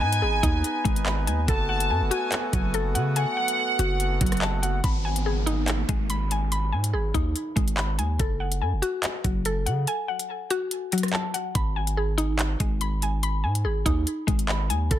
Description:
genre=hip hop, drill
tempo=143 BPM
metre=4/4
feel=half-time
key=G# phrygian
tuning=A4 = 440 Hz
part: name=warm studio violin section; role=second line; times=0.0-4.4 s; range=F#5 to A5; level=-28 LUFS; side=equal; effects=ping-pong delay
part: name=accordion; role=sustained chords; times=0.0-4.8 s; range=A3 to B4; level=-33 LUFS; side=right 1 dB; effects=none
part: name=mallet-like synth pluck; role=arpeggios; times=0.0-15.0 s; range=F#3 to B5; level=-28 LUFS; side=left 2 dB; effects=chorus, low-pass filter, ping-pong delay
part: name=hard-hitting 808-style bass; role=bass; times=0.0-15.0 s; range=F#1 to C#3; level=-26 LUFS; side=equal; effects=none
part: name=drill drum kit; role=drums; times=0.1-15.0 s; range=handclaps, hi-hat, kick drum, rim click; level=-26 LUFS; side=equal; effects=none
part: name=downlifter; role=sound effects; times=4.8-8.2 s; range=none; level=-36 LUFS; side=equal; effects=none
room=light reverb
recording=dense, heavily limited modern master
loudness=-23 LUFS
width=side -12 dB against mid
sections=0.0-4.8 A section; 4.8-15.0 B section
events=kick muted 9.9-11.6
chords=0.0 G#m; 1.5 F#madd9; 4.8 G#m; 8.2 F#madd9; 11.6 G#m

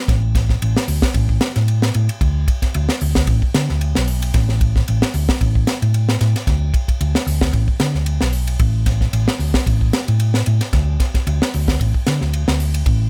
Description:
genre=afrobeat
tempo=113 BPM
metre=4/4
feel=swing 55% on 16ths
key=unclear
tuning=A4 = 438 Hz
part: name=hollow-body short-scale fingered electric bass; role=bass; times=0.1-13.1 s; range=A1 to D3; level=-20 LUFS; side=equal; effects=none
part: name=tight funk drum kit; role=drums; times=0.1-13.0 s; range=hi-hat, kick drum, ride cymbal, snare drum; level=-21 LUFS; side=equal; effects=none
room=light reverb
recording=none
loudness=-18 LUFS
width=mono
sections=0.1-13.1 A section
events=none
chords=none

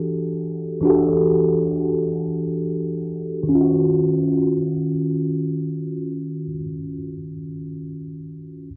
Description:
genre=R&B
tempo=45 BPM (dotted quarters)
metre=6/8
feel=straight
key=unclear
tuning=A4 = 440 Hz
part: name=mellow tine electric piano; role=accompaniment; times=0.0-8.7 s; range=Eb3 to A4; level=-22 LUFS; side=equal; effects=phaser, low-pass filter
room=light reverb, studio reverb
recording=worn, warbling old tape, cassette tape, warbly pitch drift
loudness=-22 LUFS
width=mono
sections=0.0-3.5 A section; 3.5-6.2 B section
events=filter sweep on tine electric piano 0.0-3.5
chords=0.0 Em11; 3.5 Ebm9

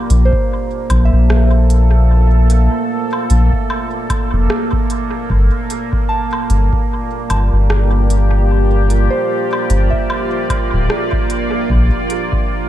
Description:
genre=ambient dub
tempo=75 BPM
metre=4/4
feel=swing 57% on 16ths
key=G dorian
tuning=A4 = 441 Hz
part: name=deep dark ambient pad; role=sustained chords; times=0.0-12.7 s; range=Bb3 to D5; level=-19 LUFS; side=right 2 dB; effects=chorus, built-in reverb
part: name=soft dub sub bass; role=bass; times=0.1-11.9 s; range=D1 to Bb1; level=-11 LUFS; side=equal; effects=none
part: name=organic electronic drum kit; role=drums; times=0.1-12.3 s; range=hi-hat, rim click, woodblock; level=-24 LUFS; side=equal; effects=overdrive, dub echo
part: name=soft synth bell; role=arpeggios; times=0.3-12.7 s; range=C5 to A5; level=-25 LUFS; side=right 3 dB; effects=chorus, dub echo
part: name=electronic kick drum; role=drums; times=0.3-12.5 s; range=none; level=-20 LUFS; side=equal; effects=none
room=little or no reverb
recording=echo-heavy mix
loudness=-12 LUFS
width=side -12 dB against mid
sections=0.0-12.7 A section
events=none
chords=0.0 Bbmaj7; 5.3 Gm7; 11.7 Bbmaj7

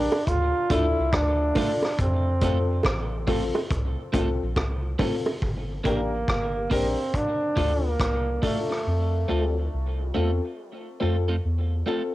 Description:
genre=dub reggae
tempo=70 BPM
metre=4/4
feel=swing 64% on 16ths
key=F major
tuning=A4 = 444 Hz
part: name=clear trombone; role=melody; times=0.0-9.7 s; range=A3 to F4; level=-28 LUFS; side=right 1 dB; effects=cassette tape, dub echo
part: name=dark upright piano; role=stabs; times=0.0-12.1 s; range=C4 to Bb4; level=-31 LUFS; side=left 4 dB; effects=cassette tape, dub echo
part: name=soft dub sub bass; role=bass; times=0.0-11.8 s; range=G1 to F2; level=-26 LUFS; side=equal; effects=none
part: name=bongos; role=percussion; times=0.1-5.4 s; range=none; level=-32 LUFS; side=right 2 dB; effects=dub echo
part: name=vintage drum kit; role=drums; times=0.3-8.9 s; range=hi-hat, kick drum, rim click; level=-29 LUFS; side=equal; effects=cassette tape
part: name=electric guitar at the edge of break-up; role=accompaniment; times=0.7-12.0 s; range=A3 to Bb4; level=-32 LUFS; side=right 4 dB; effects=cassette tape, dub echo
room=light reverb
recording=home recording on cassette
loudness=-22 LUFS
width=side -16 dB against mid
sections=0.0-5.4 A section; 5.4-12.1 B section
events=part muted 8.9-12.1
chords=0.3 Dm; 2.0 F; 5.4 Gm; 7.1 Dm; 8.9 F

